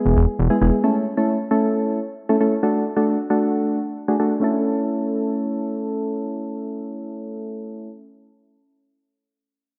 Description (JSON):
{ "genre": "pop", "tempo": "134 BPM", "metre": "4/4", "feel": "straight", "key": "A major", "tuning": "A4 = 440 Hz", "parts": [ { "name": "soft electric-piano-like synth keys", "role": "accompaniment", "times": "0.0-7.9 s", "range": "G#3 to A4", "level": "-22 LUFS", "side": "equal", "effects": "chorus, low-pass filter" }, { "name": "fat analog bass", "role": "bass", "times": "0.1-0.7 s", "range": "E1", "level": "-19 LUFS", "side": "equal", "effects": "none" } ], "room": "wet lush hall reverb, RT60 1.9 s", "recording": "dark, warm production", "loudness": "-21 LUFS", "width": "mono", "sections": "0.0-4.4 A section; 4.4-8.0 B section", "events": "none", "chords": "0.0 E; 0.8 A; 2.6 D; 4.4 A", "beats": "0.39 | 0.84 1.28 1.73 2.18 | 2.63 3.08 3.52 3.97 | 4.42 4.87 5.31 5.76 | 6.21 6.66 7.11 7.55" }